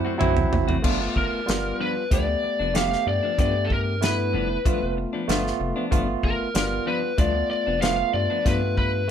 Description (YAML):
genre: straight-eighth soul blues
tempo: 94 BPM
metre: 4/4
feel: straight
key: G mixolydian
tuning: A4 = 440 Hz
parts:
  - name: barky tine electric piano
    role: accompaniment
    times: 0.0-9.1 s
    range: F#3 to G4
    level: -27 LUFS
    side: right 3 dB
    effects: medium stereo tremolo
  - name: warm horn section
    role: sustained chords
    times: 0.0-0.8 s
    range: C5 to F#5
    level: -39 LUFS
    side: left 2 dB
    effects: none
  - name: clean electric guitar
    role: stabs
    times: 0.0-8.8 s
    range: G2 to F#4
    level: -31 LUFS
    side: left 4 dB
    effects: spring reverb
  - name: round analog bass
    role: bass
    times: 0.2-9.1 s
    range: F1 to G2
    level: -28 LUFS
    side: equal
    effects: none
  - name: warm soul drum kit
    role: drums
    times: 0.2-8.9 s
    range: crash cymbal, hi-hat, kick drum, snare drum, toms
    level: -24 LUFS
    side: equal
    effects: none
  - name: lead guitar through a small cranked amp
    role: melody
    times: 1.2-9.1 s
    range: A4 to F5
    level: -25 LUFS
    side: left 1 dB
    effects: overdrive
room: light reverb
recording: band playing live in one room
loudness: -21 LUFS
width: side -8 dB against mid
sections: 0.8-9.1 A section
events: drum fill 0.0-0.8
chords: 0.0 D7; 0.8 G7